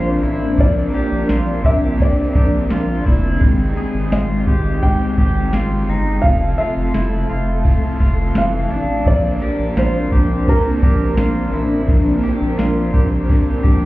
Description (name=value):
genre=dream pop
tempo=85 BPM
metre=4/4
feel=straight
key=Bb lydian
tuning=A4 = 436 Hz
part: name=felt-muted upright piano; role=melody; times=0.0-13.9 s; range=Bb4 to G5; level=-24 LUFS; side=equal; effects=tape echo
part: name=biting overdriven guitar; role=accompaniment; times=0.0-13.9 s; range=Bb2 to Bb4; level=-27 LUFS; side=right 1 dB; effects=tremolo, lush chorus
part: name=ensemble organ-string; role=sustained chords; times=0.0-13.9 s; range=Ab3 to G5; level=-21 LUFS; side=equal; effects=ensemble chorus
part: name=electric guitar at the edge of break-up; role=arpeggios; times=0.0-13.9 s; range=E3 to Ab4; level=-27 LUFS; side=left 1 dB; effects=wide subtle chorus, tape echo
part: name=round analog bass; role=bass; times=0.0-13.9 s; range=F1 to Bb1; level=-19 LUFS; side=equal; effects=none
part: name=soft vintage rhythm box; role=drums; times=0.2-13.8 s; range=kick drum, ride cymbal, snare drum, tambourine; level=-16 LUFS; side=equal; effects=none
room=light reverb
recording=heard muffled through a wall, club reverb, EQ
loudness=-14 LUFS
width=side -17 dB against mid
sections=0.0-13.9 A section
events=none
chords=0.0 Bbadd9; 3.4 Abmaj7; 6.2 Fmaj7; 9.1 Bbadd9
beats=| 0.58 1.29 2.00 2.70 | 3.41 4.11 4.82 5.53 | 6.23 6.94 7.64 8.35 | 9.05 9.76 10.47 11.17 | 11.88 12.59 13.29